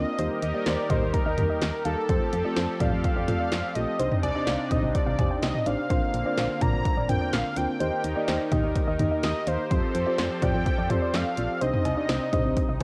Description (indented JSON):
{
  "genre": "synth-pop",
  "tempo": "126 BPM",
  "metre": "4/4",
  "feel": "straight",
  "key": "unclear",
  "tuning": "A4 = 440 Hz",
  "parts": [
    { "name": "unison lead", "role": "melody", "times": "0.0-12.8 s", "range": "A4 to Bb5", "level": "-33 LUFS", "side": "equal", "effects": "cassette tape" },
    { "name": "muted felt-like synth keys", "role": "accompaniment", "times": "0.0-12.8 s", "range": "G3 to Eb5", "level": "-33 LUFS", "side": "equal", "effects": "chorus, cassette tape" },
    { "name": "brassy analog pad", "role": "sustained chords", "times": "0.0-12.8 s", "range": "C3 to Bb4", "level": "-36 LUFS", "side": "equal", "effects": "chorus, cassette tape" },
    { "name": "solid FM bass", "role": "bass", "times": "0.0-12.8 s", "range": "A1 to F2", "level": "-33 LUFS", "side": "equal", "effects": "none" },
    { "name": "warbly dusty pluck", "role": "second line", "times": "0.2-12.8 s", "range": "C5 to G5", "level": "-37 LUFS", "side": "equal", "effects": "chorus, cassette tape, analog delay" },
    { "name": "punchy analog drum machine", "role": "drums", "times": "0.2-12.8 s", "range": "cowbell, hi-hat, kick drum, snare drum, toms", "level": "-30 LUFS", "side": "equal", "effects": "cassette tape" }
  ],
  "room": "light reverb",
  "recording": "home recording on cassette",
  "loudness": "-26 LUFS",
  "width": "mono",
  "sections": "0.0-12.8 A section",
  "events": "none",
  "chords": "0.2 Eb; 2.1 Fadd9; 4.0 Cmadd9; 5.9 Bbadd9; 7.8 Eb; 9.7 Fadd9; 11.6 Cmadd9",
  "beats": "| 0.19 0.66 1.14 1.61 | 2.09 2.57 3.04 3.52 | 4.00 4.47 4.95 5.42 | 5.90 6.38 6.85 7.33 | 7.80 8.28 8.76 9.23 | 9.71 10.19 10.66 11.14 | 11.62 12.09 12.57"
}